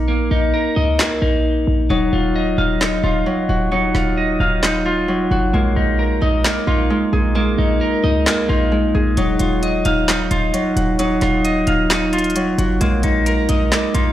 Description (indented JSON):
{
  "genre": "hip hop, trap",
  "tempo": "132 BPM",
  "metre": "4/4",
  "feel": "half-time",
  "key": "Eb minor",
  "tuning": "A4 = 443 Hz",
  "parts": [
    { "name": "clean electric guitar", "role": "arpeggios", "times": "0.0-14.1 s", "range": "Bb3 to F5", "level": "-19 LUFS", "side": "equal", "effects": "phaser, tape echo" },
    { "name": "short 808-style bass", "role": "bass", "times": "0.0-14.1 s", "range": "Eb1 to Db2", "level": "-20 LUFS", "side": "equal", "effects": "none" },
    { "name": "trap drum kit", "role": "drums", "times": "1.0-14.1 s", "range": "handclaps, hi-hat, snare drum", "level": "-20 LUFS", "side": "equal", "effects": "none" },
    { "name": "Celtic harp", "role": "accompaniment", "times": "1.9-14.1 s", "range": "Gb3 to Ab4", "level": "-21 LUFS", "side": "right 1 dB", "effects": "none" }
  ],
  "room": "light reverb",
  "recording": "played on a big sound system in a bare room, large studio reverb",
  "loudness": "-15 LUFS",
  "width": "side -12 dB against mid",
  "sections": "0.0-14.1 A section",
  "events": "break 0.1-1.9; hi-hats muted 1.9-9.2",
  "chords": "0.0 Bbsus4; 1.9 Ebmadd9; 5.5 Bb7sus4; 9.2 Ebmadd9; 12.8 Bb7sus4"
}